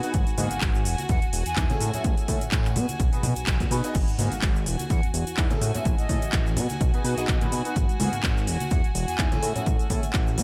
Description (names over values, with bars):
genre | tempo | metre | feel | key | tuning
filtered disco house | 126 BPM | 4/4 | swing 55% on 16ths | unclear | A4 = 440 Hz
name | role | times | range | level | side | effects
bright concert grand piano | accompaniment | 0.0-10.0 s | G#3 to D#5 | -36 LUFS | equal | phaser, sidechain pumping
rich chamber string section | sustained chords | 0.0-10.4 s | F#4 to G#5 | -37 LUFS | equal | vintage 12-bit sampler grit, sidechain pumping
house drum kit | drums | 0.0-10.4 s | cabasa, crash cymbal, handclaps, hi-hat | -34 LUFS | equal | sidechain pumping on hats, sidechain pumping on perc, sidechain pumping on cymbals
egg shaker and congas | percussion | 0.0-10.4 s | none | -36 LUFS | equal | sidechain pumping on perc
fat analog bass | bass | 0.1-10.4 s | E1 to B2 | -30 LUFS | equal | sidechain pumping
electronic kick drum | drums | 0.1-10.2 s | none | -27 LUFS | equal | none
breathy jazz flute | melody | 1.1-1.9, 4.9-9.5 s | D#5 to G#5 | -38 LUFS | equal | sidechain pumping, delay
room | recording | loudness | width
light reverb, small room ambience | none | -25 LUFS | mono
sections
0.0-10.4 A section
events
none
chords
0.1 G#m9; 0.9 E; 1.8 Amaj7; 2.8 B6; 4.0 G#m9; 4.7 E; 5.6 Amaj7; 6.6 B6; 7.8 G#m9; 8.5 E; 9.4 Amaj7